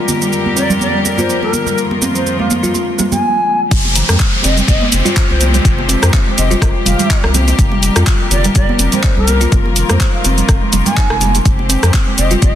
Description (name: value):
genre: afro house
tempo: 124 BPM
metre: 4/4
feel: swing 55% on 16ths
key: F dorian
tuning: A4 = 441 Hz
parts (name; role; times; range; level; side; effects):
- rich chamber string section; sustained chords; 0.0-12.6 s; F2 to C5; -21 LUFS; left 2 dB; sidechain pumping
- kalimba; arpeggios; 0.1-12.5 s; D3 to F4; -19 LUFS; equal; sidechain pumping, tape echo
- deep house drum kit; drums; 0.1-12.5 s; handclaps, hi-hat, rim click, shaker; -18 LUFS; equal; overdrive
- congas; percussion; 0.1-12.5 s; none; -21 LUFS; right 4 dB; none
- breathy bass bansuri; melody; 0.6-12.6 s; Bb4 to Ab5; -21 LUFS; equal; tape echo
- warm sub bass; bass; 3.7-12.5 s; F1 to F2; -15 LUFS; equal; sidechain pumping
- electronic kick drum; drums; 3.7-12.5 s; none; -14 LUFS; equal; none
- downlifter; sound effects; 3.7-7.6 s; none; -20 LUFS; equal; none
room: light reverb, small room ambience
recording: dense, heavily limited modern master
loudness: -11 LUFS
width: side -11 dB against mid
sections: 0.0-3.7 A section; 3.7-12.6 B section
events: drop 3.7-12.6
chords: 0.0 Gm/F; 1.8 Bbsus4/F; 3.7 Fmadd9; 7.6 Gm/F; 9.5 Bbsus4/F; 11.5 Fmadd9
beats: 0.33 0.81 1.29 | 1.78 2.26 2.75 3.23 | 3.71 4.20 4.68 5.17 | 5.65 6.13 6.62 7.10 | 7.58 8.07 8.55 9.04 | 9.52 10.00 10.49 10.97 | 11.46 11.94 12.42